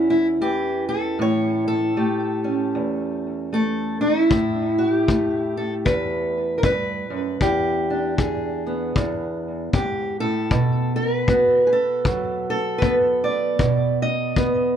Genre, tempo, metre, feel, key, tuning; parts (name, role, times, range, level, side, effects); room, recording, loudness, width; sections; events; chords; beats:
acoustic country blues, solo or duo; 77 BPM; 4/4; swing 60% on 8ths; A4 = 441 Hz
fingerpicked steel-string acoustic guitar; melody; 0.0-14.8 s; E2 to D#5; -20 LUFS; right 1 dB; tape echo
kick drum; drums; 4.3-14.6 s; -23 LUFS; left 2 dB
moderate small room ambience, RT60 0.5 s; -19 LUFS; side -9 dB against mid
0.0-14.8 A section
0.0 A7; 7.4 E7; 10.5 B7(no3)
0.42 | 1.20 1.97 2.75 3.53 | 4.31 5.08 5.86 6.64 | 7.41 8.19 8.96 9.74 | 10.51 11.29 12.06 12.83 | 13.61 14.38